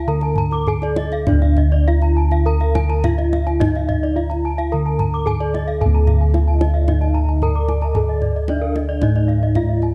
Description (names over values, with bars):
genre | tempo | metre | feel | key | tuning
Balinese gamelan | 100-112 BPM | 4/4 | straight | D pelog | A4 = 440 Hz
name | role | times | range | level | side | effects
gamelan-type bronze metallophone | melody | 0.0-9.9 s | D4 to Bb4-40c | -26 LUFS | equal | none
gamelan-type bronze metallophone | arpeggios | 0.0-9.9 s | D5 to Bb5-40c | -30 LUFS | equal | none
gamelan-type bossed gongs | bass | 0.0-9.9 s | D2 to A4-45c | -19 LUFS | equal | none
gamelan-type bronze metallophone | arpeggios | 0.2-9.8 s | Bb4-40c to D6 | -33 LUFS | equal | none
kendang | percussion | 0.2-9.9 s | none | -26 LUFS | equal | none
low xiao | second line | 6.5-9.9 s | D5 to F5-47c | -35 LUFS | equal | none
room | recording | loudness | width
light reverb | dark, warm production | -18 LUFS | mono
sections
0.0-5.8 A section; 5.8-9.9 B section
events
none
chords
none